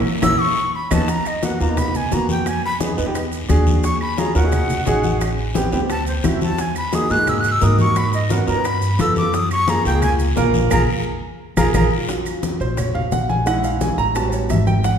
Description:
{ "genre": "Afro-Cuban jazz", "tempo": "174 BPM", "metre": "4/4", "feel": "straight", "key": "unclear", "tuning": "A4 = 440 Hz", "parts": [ { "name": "breathy bright jazz flute", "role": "melody", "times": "0.2-11.9 s", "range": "C5 to F#6", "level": "-22 LUFS", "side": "left 1 dB", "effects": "none" }, { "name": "warm concert grand piano", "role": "accompaniment", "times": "0.2-15.0 s", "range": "Gb3 to Bb5", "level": "-22 LUFS", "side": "right 2 dB", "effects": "none" }, { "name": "upright bass", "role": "bass", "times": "0.2-15.0 s", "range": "Ab1 to G#2", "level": "-21 LUFS", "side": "equal", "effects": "none" }, { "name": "bongos", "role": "percussion", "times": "0.2-15.0 s", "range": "none", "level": "-29 LUFS", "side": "left 6 dB", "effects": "none" }, { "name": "claves", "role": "percussion", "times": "0.2-14.7 s", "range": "none", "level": "-34 LUFS", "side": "right 3 dB", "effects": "none" }, { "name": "congas", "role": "percussion", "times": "0.2-15.0 s", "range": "none", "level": "-25 LUFS", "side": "left 2 dB", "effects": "none" }, { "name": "guiro", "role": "percussion", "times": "0.2-11.8 s", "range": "none", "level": "-35 LUFS", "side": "left 4 dB", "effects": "none" }, { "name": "maracas", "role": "percussion", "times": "0.2-15.0 s", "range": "none", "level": "-36 LUFS", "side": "right 5 dB", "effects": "none" } ], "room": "wet recital hall reverb, RT60 1.5 s", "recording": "recorded in a church or concert hall", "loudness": "-16 LUFS", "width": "side -8 dB against mid", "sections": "0.0-1.1 A section; 1.1-12.1 A section; 12.1-15.0 A section", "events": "band accent 0.0-1.1, 10.7-12.1; flute solo 0.0-12.1; drum fill 0.6-1.1; grand piano solo 12.1-15.0", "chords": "0.4 B9; 1.1 Abm13 (rootless); 2.5 Fm7b5; 3.1 E9; 3.8 Ebm11; 5.2 Am7; 5.9 D9; 6.6 Emaj9#11; 8.0 Abm11; 8.7 G9; 9.3 Gbmaj9; 10.7 Bb5; 12.1 Gbmaj9#11; 13.5 Bbm7b5; 14.2 A13" }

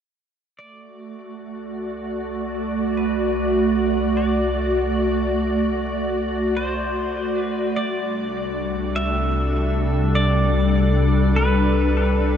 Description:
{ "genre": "ambient", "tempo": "50 BPM", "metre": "3/4", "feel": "straight", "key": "unclear", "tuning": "A4 = 440 Hz", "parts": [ { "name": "pedal steel guitar", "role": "melody", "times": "0.6-12.4 s", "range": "B4 to E5", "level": "-28 LUFS", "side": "equal", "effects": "lush chorus, shimmer reverb, ping-pong delay" }, { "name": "glassy FM pad", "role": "sustained chords", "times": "1.1-12.4 s", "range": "G3 to D5", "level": "-21 LUFS", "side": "equal", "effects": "ensemble chorus, built-in reverb, shimmer reverb" }, { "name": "deep rumbling drone", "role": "bass", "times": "2.1-12.4 s", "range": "C2", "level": "-24 LUFS", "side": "equal", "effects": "built-in reverb" }, { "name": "organ-like drone", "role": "drone", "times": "8.5-12.4 s", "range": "C3", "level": "-26 LUFS", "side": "equal", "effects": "ensemble chorus, built-in reverb" } ], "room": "wet huge ambient reverb, RT60 8.0 s", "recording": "dreamy mix soaked in reverb", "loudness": "-19 LUFS", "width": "side -8 dB against mid", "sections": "0.6-12.4 A section", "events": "fade-in on synth drone 0.6-12.4; fade-in on pedal steel guitar 0.6-12.4", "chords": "0.6 Bm7/C (rootless); 7.8 Gadd9/C" }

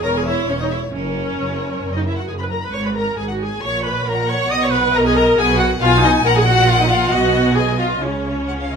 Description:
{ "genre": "quick classical-period movement for string orchestra", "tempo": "135 BPM", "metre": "4/4", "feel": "rubato", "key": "unclear", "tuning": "A4 = 442 Hz", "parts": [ { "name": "rich chamber violin section", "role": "melody", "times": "0.0-8.8 s", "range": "C#5 to D#6", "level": "-24 LUFS", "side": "left 6 dB", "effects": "none" }, { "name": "rich chamber violin section", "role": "second line", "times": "0.0-8.8 s", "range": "A#4 to G#5", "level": "-22 LUFS", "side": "left 4 dB", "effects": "none" }, { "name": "rich chamber viola section", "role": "accompaniment", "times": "0.0-8.8 s", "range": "C#4 to D#5", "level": "-19 LUFS", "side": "right 1 dB", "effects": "none" }, { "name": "rich chamber double bass section", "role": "bass", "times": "0.0-8.8 s", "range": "E1 to C#2", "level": "-23 LUFS", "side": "right 2 dB", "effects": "none" }, { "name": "warm chamber cello section", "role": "bass", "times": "0.0-8.8 s", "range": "E2 to C#3", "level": "-23 LUFS", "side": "right 2 dB", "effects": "none" } ], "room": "moderate recital hall reverb, RT60 1.6 s", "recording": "close, detailed microphones", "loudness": "-15 LUFS", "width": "side -6 dB against mid", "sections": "0.0-8.8 A section", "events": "none", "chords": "0.0 C#m/E; 0.9 F#; 2.7 G#sus4; 3.6 F#/A#; 4.5 B; 6.2 F#/A#; 7.1 B6; 8.0 N.C." }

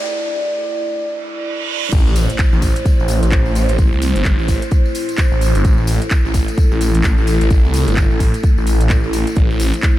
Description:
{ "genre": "bass house", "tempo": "129 BPM", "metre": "4/4", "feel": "swing 60% on 16ths", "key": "A minor", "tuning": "A4 = 444 Hz", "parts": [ { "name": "dark analog pad", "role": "sustained chords", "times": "0.0-10.0 s", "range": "A3 to D5", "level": "-22 LUFS", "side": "equal", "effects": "chorus, phaser, sidechain pumping" }, { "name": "riser, reverse cymbal and impact", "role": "sound effects", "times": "0.0-3.8 s", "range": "none", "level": "-26 LUFS", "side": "right 2 dB", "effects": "none" }, { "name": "phased detuned saw bass", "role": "bass", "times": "1.9-9.7 s", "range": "G1 to C2", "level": "-16 LUFS", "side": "equal", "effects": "phaser, tube saturation, sidechain pumping" }, { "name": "electronic kick drum", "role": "drums", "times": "1.9-9.9 s", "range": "none", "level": "-14 LUFS", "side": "equal", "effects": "none" }, { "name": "house drum kit", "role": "drums", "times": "1.9-9.9 s", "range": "crash cymbal, handclaps, hi-hat", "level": "-26 LUFS", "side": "equal", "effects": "high-pass filter on snare, high-pass filter on hats, high-pass filter on cymbals, high-pass filter on room" }, { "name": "tambourine", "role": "percussion", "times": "1.9-9.9 s", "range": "none", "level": "-33 LUFS", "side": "left 6 dB", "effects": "none" } ], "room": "light reverb", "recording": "high-pass filter", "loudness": "-13 LUFS", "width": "side -14 dB against mid", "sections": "0.0-1.9 A section; 1.9-10.0 B section", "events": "build-up 0.0-1.9; filter sweep on analog synth pad 0.0-1.9; filter sweep 0.0-1.9; break 0.1-1.9; reverse cymbal 1.0-1.9; drop 1.9-10.0; impact 1.9-3.8", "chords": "0.0 A5; 1.9 Am" }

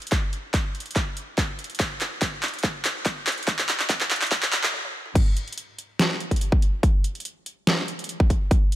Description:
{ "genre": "future bass", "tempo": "143 BPM", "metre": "4/4", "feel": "half-time", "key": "none", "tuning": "none", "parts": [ { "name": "dubstep drum kit", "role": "drums", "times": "0.0-8.8 s", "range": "crash cymbal, handclaps, hi-hat, snare drum, toms", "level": "-24 LUFS", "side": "equal", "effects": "overdrive, high-pass filter on hats, high-pass filter on snare, high-pass filter on toms, high-pass filter on cymbals, high-pass filter on room" }, { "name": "electronic kick drum", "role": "drums", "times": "0.1-8.6 s", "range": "none", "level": "-21 LUFS", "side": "equal", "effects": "overdrive" } ], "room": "light reverb", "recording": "high-pass filter", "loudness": "-22 LUFS", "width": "side -14 dB against mid", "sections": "0.0-5.2 A section; 5.2-8.8 B section", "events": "build-up 0.0-5.2; drum fill 0.0-4.7, 4.7-5.2; filter sweep 0.0-5.2; stop 4.7-5.2; drop 5.2-8.8", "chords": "none" }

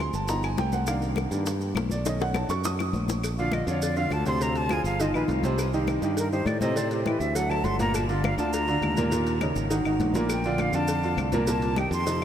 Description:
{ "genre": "Afro-Cuban jazz", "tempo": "204 BPM", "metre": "4/4", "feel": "straight", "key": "Bb major", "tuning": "A4 = 440 Hz", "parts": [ { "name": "clear upright piano", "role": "accompaniment", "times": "0.0-12.2 s", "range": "Bb2 to D#6", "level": "-28 LUFS", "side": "right 1 dB", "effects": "none" }, { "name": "modern bright fingered electric bass", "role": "bass", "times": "0.0-12.2 s", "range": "G1 to A2", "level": "-28 LUFS", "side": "equal", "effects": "none" }, { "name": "claves", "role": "percussion", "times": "0.0-12.2 s", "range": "none", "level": "-41 LUFS", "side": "left 8 dB", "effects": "none" }, { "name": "bongos and cowbell", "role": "percussion", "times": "0.1-12.2 s", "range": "none", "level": "-37 LUFS", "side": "left 5 dB", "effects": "none" }, { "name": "congas", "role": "percussion", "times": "0.1-12.2 s", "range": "none", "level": "-34 LUFS", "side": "left 3 dB", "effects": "none" }, { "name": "maracas", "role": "percussion", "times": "0.1-12.2 s", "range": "none", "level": "-41 LUFS", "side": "right 6 dB", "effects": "none" }, { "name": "breathy silver concert flute", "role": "melody", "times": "3.4-12.2 s", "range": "G4 to C6", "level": "-30 LUFS", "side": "left 1 dB", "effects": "ping-pong delay" } ], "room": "moderate huge ambient reverb, RT60 4.1 s", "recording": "dreamy mix soaked in reverb", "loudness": "-23 LUFS", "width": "side -10 dB against mid", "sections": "0.0-3.2 A section; 3.2-12.2 A section", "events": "upright piano solo 0.0-3.2; drum fill 2.1-3.2; flute solo 3.2-12.2", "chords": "0.3 Gaug7; 0.9 Cm9; 2.1 B9; 3.2 Bbadd9; 4.4 Dm7b5; 5.0 Eb69/G; 5.6 Cm; 6.8 Am7; 7.4 D; 7.9 Gm7; 9.1 Eb5; 9.7 Absus2; 10.3 Bbmaj9; 11.5 Cm7" }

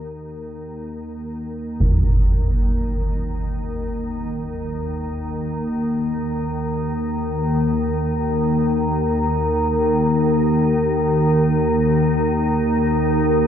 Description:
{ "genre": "dark ambient drone", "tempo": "free time", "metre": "none", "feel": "none", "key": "unclear", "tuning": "A4 = 438 Hz", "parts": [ { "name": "organ-like drone", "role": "drone", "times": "0.0-13.5 s", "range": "Eb2 to Eb3", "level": "-19 LUFS", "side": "equal", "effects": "ensemble chorus, built-in reverb" }, { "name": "concert bass drum", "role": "percussion", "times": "1.8-2.0 s", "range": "none", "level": "-20 LUFS", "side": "equal", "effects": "low-pass filter on kick" } ], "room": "wet huge ambient reverb, RT60 9.2 s", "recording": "dark, warm production", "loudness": "-18 LUFS", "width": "side -9 dB against mid", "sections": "0.0-13.5 A section", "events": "fade-in on synth drone 0.0-13.5; fade-in on drum 0.0-13.5", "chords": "none" }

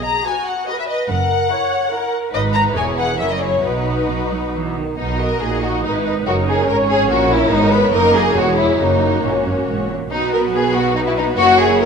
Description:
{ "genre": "quick classical-period movement for string orchestra", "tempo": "132-148 BPM", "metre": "3/4", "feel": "rubato", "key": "B major", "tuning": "A4 = 440 Hz", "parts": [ { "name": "warm studio violin section", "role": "melody", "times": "0.0-11.9 s", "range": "B4 to A#5", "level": "-21 LUFS", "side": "left 5 dB", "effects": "none" }, { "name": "rich studio viola section", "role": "accompaniment", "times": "0.0-11.9 s", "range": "G#3 to C#5", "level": "-22 LUFS", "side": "right 3 dB", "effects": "none" }, { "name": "rich symphonic double bass section", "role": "bass", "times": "0.0-11.9 s", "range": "E1 to B1", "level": "-25 LUFS", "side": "right 4 dB", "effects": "none" }, { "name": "warm studio cello section", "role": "bass", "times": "0.0-11.9 s", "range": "E2 to F#3", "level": "-23 LUFS", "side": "right 3 dB", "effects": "none" }, { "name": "warm studio violin section", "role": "second line", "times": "0.3-11.9 s", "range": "C#4 to C#5", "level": "-18 LUFS", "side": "left 2 dB", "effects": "none" } ], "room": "moderate scoring stage reverb, RT60 1.9 s", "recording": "none", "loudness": "-15 LUFS", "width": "side -6 dB against mid", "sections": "0.0-5.0 A section; 5.0-11.9 B section", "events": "none", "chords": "0.0 B5; 1.1 F#7; 2.3 G#m; 2.8 C#m/E; 3.2 F#7; 3.6 B; 6.3 F#; 7.5 G#m; 8.4 C#m/E; 8.8 F#; 10.1 B5" }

